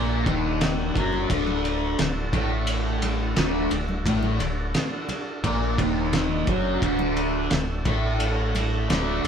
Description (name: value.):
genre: psychedelic rock.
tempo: 87 BPM.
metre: 4/4.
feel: straight.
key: unclear.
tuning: A4 = 439 Hz.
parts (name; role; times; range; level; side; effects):
overdriven tonewheel organ; sustained chords; 0.0-9.3 s; D4 to A4; -34 LUFS; right 4 dB; slow rotary speaker, chorus vibrato.
fuzz guitar; riff; 0.0-9.3 s; D2 to Bb3; -25 LUFS; equal; distortion, phaser.
deep dub fingered electric bass; bass; 0.0-9.3 s; D1 to Bb1; -28 LUFS; equal; none.
cloth-damped thuddy drum kit; drums; 0.3-9.3 s; kick drum, ride cymbal, snare drum; -27 LUFS; equal; none.
congas; percussion; 0.3-9.3 s; none; -36 LUFS; right 1 dB; none.
room: light reverb.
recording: band playing live in one room.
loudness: -22 LUFS.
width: side -7 dB against mid.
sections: 0.0-9.3 A section.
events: none.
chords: 0.0 D.